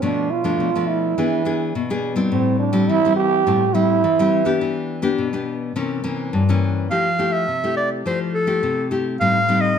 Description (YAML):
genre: samba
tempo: 105 BPM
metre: 4/4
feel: straight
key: unclear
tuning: A4 = 435 Hz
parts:
  - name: growling trombone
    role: second line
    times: 0.0-4.6 s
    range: C4 to G4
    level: -19 LUFS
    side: right 7 dB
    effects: none
  - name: nylon-string guitar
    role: accompaniment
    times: 0.0-9.8 s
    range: G2 to G#4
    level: -20 LUFS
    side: left 3 dB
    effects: none
  - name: warm clarinet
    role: melody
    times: 6.9-9.8 s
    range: A4 to F5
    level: -20 LUFS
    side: equal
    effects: none
room: moderate large studio reverb, RT60 1.2 s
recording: none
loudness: -17 LUFS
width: side -8 dB against mid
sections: 0.0-6.9 A section; 6.9-9.8 B section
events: trombone solo 0.0-6.9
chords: 0.0 Bm7b5; 1.2 E7; 2.3 Am7; 4.6 Em7; 5.8 C7b9; 6.9 Fmaj9; 9.2 Am7b5